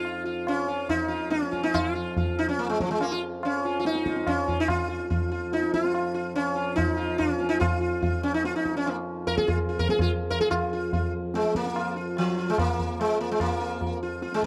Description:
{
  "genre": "indian classical, Hindustani",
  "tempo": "144 BPM",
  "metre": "7/4",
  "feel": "straight",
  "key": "F raga malkauns",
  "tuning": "A4 = 441 Hz",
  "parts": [
    { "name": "sitar", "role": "melody", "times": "0.0-14.5 s", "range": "F3 to Bb4", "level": "-29 LUFS", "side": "equal", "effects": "none" },
    { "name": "pedal harmonium", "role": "drone", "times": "0.0-14.5 s", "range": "F2 to F3", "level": "-35 LUFS", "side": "equal", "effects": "none" },
    { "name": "tabla", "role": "percussion", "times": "0.0-14.5 s", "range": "none", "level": "-32 LUFS", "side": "equal", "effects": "none" }
  ],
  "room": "small room ambience",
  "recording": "dry, close 1970s-style studio recording",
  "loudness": "-27 LUFS",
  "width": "mono",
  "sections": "0.0-10.5 A section; 10.5-14.5 B section",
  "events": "speeding up 0.0-14.5",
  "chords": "none"
}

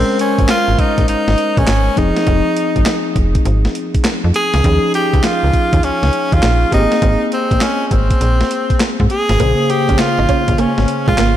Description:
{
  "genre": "R&B, new jack swing",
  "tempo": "101 BPM",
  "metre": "4/4",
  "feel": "swing 66% on 16ths",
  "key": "Bb minor",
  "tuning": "A4 = 440 Hz",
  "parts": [
    { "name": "bright tenor saxophone", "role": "melody", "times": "0.0-11.4 s", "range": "C4 to Ab4", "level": "-17 LUFS", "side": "right 1 dB", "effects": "tape echo" },
    { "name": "tine electric piano", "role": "accompaniment", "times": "0.0-11.4 s", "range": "Db3 to C5", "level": "-20 LUFS", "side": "left 3 dB", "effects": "medium stereo tremolo" },
    { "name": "slap-like FM bass", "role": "bass", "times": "0.0-11.4 s", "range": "F1 to Ab2", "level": "-15 LUFS", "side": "equal", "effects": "none" },
    { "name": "clean 12-bit digital drum machine", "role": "drums", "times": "0.2-11.4 s", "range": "handclaps, hi-hat, kick drum, snare drum", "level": "-18 LUFS", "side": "equal", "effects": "none" },
    { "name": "direct-recorded clean electric guitar", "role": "riff", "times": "9.4-11.3 s", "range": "Ab3 to Eb4", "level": "-20 LUFS", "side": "right 4 dB", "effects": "ensemble chorus" }
  ],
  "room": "moderate church reverb, RT60 2.8 s",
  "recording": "dreamy mix soaked in reverb",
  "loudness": "-12 LUFS",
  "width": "side -11 dB against mid",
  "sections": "0.0-11.4 A section",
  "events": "none",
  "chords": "0.0 Bbm9; 2.0 Fm7; 4.6 Eb9sus4; 6.7 Abadd9; 9.4 Bbm9"
}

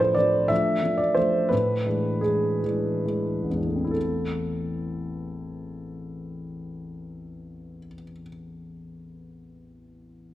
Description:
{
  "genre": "classical, romantic character piece for solo piano",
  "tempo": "43-64 BPM (dotted quarters)",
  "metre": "6/8",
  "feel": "rubato",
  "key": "A minor",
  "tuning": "A4 = 442 Hz",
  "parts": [
    { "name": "clear grand piano", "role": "solo", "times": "0.0-10.3 s", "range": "A1 to E5", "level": "-24 LUFS", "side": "equal", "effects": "none" }
  ],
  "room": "moderate recital hall reverb, RT60 1.8 s",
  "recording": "none",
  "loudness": "-22 LUFS",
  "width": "side -14 dB against mid",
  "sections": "0.0-3.9 A section; 3.9-8.8 B section",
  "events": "slowing down 0.0-3.9",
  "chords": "0.0 Dm/A; 1.5 E7/A; 3.9 Am"
}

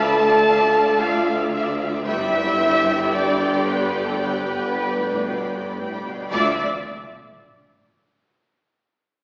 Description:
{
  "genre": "cinematic, epic orchestral film score",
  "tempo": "113 BPM",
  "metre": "4/4",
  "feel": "straight",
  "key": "D dorian",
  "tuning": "A4 = 436 Hz",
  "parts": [
    { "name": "warm studio violin section", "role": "melody", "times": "0.0-6.6 s", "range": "A4 to A5", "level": "-32 LUFS", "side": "equal", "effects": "none" },
    { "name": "mellow hollow flute section", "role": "second line", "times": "0.0-6.6 s", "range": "A4 to A5", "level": "-32 LUFS", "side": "equal", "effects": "none" },
    { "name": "warm studio violin section", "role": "second line", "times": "0.0-6.6 s", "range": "A4 to A5", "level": "-30 LUFS", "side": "equal", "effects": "none" },
    { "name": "rich studio viola section", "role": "accompaniment", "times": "0.0-6.6 s", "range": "B4 to B5", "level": "-32 LUFS", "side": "equal", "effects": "none" },
    { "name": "mellow French horn section", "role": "sustained chords", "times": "0.0-6.5 s", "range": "A3 to A4", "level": "-26 LUFS", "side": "equal", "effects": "none" },
    { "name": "rich symphonic string section", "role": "sustained chords", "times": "0.0-6.6 s", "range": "G3 to G5", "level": "-30 LUFS", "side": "equal", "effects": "none" },
    { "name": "dark trumpet section", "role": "stabs", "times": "0.0-6.6 s", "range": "A4 to A5", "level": "-28 LUFS", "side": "equal", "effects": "none" },
    { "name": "clear studio cello section", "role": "bass", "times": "0.0-6.6 s", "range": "D2 to B2", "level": "-32 LUFS", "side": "equal", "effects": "none" },
    { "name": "rich symphonic double bass section", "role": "bass", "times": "0.0-6.6 s", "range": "G1 to D2", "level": "-32 LUFS", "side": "equal", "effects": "none" },
    { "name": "sub drop", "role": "sound effects", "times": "6.3-8.5 s", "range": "none", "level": "-46 LUFS", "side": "equal", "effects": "none" }
  ],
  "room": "wet scoring stage reverb, RT60 1.6 s",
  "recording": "heard from further back in the room, AM radio sound",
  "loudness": "-21 LUFS",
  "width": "mono",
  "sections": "0.0-6.3 A section; 6.3-8.5 B section",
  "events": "impact 6.3-8.5",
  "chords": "0.0 Dmadd9; 2.1 G; 6.3 Dmadd9"
}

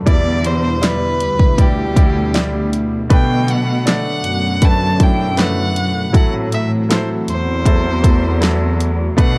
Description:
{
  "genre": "pop ballad",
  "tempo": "79 BPM",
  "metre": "4/4",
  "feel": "straight",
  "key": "unclear",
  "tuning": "A4 = 440 Hz",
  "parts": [
    { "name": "clear concert grand piano", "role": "accompaniment", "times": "0.0-9.4 s", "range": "A2 to D5", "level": "-25 LUFS", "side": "equal", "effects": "none" },
    { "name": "warm analog pad", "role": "sustained chords", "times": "0.0-9.4 s", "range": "B2 to F#4", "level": "-27 LUFS", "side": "equal", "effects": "chorus" },
    { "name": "muted symphonic cello section", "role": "bass", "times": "0.0-9.4 s", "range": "D2 to B2", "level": "-21 LUFS", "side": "equal", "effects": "none" },
    { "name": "clear violin", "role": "melody", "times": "0.1-9.4 s", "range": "G4 to A5", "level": "-24 LUFS", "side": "equal", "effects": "none" },
    { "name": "pop drum kit", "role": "drums", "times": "0.1-9.4 s", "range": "hi-hat, kick drum, snare drum", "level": "-16 LUFS", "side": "equal", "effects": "none" }
  ],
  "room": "small room reverb",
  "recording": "dark, warm production",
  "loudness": "-16 LUFS",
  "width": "mono",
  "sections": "0.0-9.4 A section",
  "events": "none",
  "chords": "0.1 Em7; 3.1 Bm7; 6.1 F#m7b5"
}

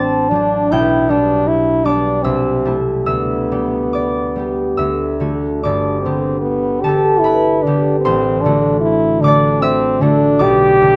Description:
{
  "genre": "classical, romantic duo for French horn and harp",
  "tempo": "69-79 BPM",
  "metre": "3/4",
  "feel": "rubato",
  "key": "G major",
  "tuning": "A4 = 437 Hz",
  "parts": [
    { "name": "warm French horn", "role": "melody", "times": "0.0-11.0 s", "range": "B3 to G4", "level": "-18 LUFS", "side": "equal", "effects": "none" },
    { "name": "concert harp", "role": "accompaniment", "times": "0.0-11.0 s", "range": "G1 to A6", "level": "-18 LUFS", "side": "equal", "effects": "none" }
  ],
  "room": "light reverb",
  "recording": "close, detailed microphones",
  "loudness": "-15 LUFS",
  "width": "mono",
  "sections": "0.0-11.0 A section",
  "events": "none",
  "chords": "0.0 D7/A; 0.7 G/B; 2.2 Am7/C; 3.1 G/D; 4.8 D; 5.6 G; 8.1 D7/A; 10.4 G/B"
}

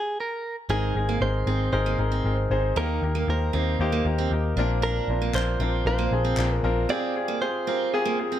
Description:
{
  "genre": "piano-driven pop",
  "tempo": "116 BPM",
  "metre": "4/4",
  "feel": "straight",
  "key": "unclear",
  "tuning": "A4 = 440 Hz",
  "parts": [
    { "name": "direct-recorded clean electric guitar", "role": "melody", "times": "0.0-8.4 s", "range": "G4 to D5", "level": "-29 LUFS", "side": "right 3 dB", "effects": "none" },
    { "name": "clear baby grand piano", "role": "accompaniment", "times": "0.7-8.4 s", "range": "Ab2 to C5", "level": "-28 LUFS", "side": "left 4 dB", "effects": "none" },
    { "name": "picked steel-string acoustic guitar", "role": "riff", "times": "0.7-8.4 s", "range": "Bb3 to Eb4", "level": "-31 LUFS", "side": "right 8 dB", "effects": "none" },
    { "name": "vintage muted picked electric bass", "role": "bass", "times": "0.7-6.8 s", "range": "Ab1 to Eb2", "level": "-25 LUFS", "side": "equal", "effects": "none" },
    { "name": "group handclap", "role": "percussion", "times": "5.3-6.5 s", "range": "none", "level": "-35 LUFS", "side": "left 3 dB", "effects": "none" }
  ],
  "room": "moderate large studio reverb, RT60 0.8 s, small room reverb",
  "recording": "none",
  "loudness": "-22 LUFS",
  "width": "side -11 dB against mid",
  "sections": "0.7-8.4 A section",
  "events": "stop 0.0-0.7",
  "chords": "0.0 N.C.; 0.7 Abadd9; 2.8 Eb; 4.6 Bbadd9; 6.9 Fmadd9"
}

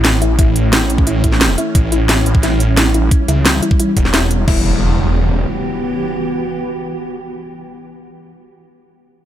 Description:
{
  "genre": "dark technical drum and bass",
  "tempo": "176 BPM",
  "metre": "4/4",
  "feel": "straight",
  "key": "E dorian",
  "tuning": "A4 = 440 Hz",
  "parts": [
    { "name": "swarming drone", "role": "sustained chords", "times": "0.0-7.8 s", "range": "E3 to G4", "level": "-21 LUFS", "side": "right 1 dB", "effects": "built-in reverb, sidechain pumping" },
    { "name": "snarling distorted saw bass", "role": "bass", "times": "0.0-5.5 s", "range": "E1 to C#2", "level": "-15 LUFS", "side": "equal", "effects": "distortion, tube saturation, sidechain pumping" },
    { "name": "drum and bass drum kit", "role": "drums", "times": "0.0-4.5 s", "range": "crash cymbal, hi-hat, snare drum", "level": "-16 LUFS", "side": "equal", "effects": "none" },
    { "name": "soft round pluck", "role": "arpeggios", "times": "0.2-4.6 s", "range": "E4", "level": "-22 LUFS", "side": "left 3 dB", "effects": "wide subtle chorus, sidechain pumping, dub echo" },
    { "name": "electronic kick drum", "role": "drums", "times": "0.4-4.5 s", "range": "none", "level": "-14 LUFS", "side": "equal", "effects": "none" },
    { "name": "impact", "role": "sound effects", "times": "4.5-7.9 s", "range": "none", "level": "-22 LUFS", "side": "right 1 dB", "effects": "none" }
  ],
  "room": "light reverb",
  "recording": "none",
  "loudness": "-12 LUFS",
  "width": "side -11 dB against mid",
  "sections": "0.0-4.5 A section; 4.5-7.2 B section",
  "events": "none",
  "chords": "0.0 A; 4.5 Em"
}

